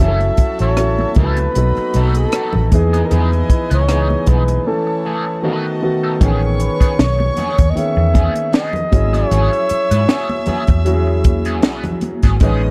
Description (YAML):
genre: lush 1970s-style soul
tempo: 77 BPM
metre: 4/4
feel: swing 54% on 16ths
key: E major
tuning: A4 = 444 Hz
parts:
  - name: breathy flugelhorn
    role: melody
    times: 0.0-11.5 s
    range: G#4 to E5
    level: -23 LUFS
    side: equal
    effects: none
  - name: warm chamber string section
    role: second line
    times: 0.0-12.7 s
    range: E4 to E6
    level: -30 LUFS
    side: equal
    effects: none
  - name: warm concert grand piano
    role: accompaniment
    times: 0.0-12.7 s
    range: D#3 to B4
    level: -24 LUFS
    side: equal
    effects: none
  - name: electric guitar at the edge of break-up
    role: riff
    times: 0.0-12.6 s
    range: D#3 to B4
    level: -30 LUFS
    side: equal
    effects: wah, spring reverb
  - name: vintage muted fingered electric bass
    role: bass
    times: 0.0-12.7 s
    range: F#1 to G#2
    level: -18 LUFS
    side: equal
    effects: none
  - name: congas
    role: percussion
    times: 0.0-12.7 s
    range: none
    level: -29 LUFS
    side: equal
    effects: none
  - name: compact cocktail drum kit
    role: drums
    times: 0.2-12.6 s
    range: hi-hat, kick drum, rim click, snare drum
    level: -17 LUFS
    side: equal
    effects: none
room: little or no reverb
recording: dry, close 1970s-style studio recording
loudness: -16 LUFS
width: mono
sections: 0.0-6.2 A section; 6.2-12.7 B section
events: break 4.7-6.2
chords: 0.0 F#m7; 1.5 B7; 2.7 Emaj7; 4.7 Amaj7; 5.4 B7; 6.2 Amaj9#11; 8.9 E69/G#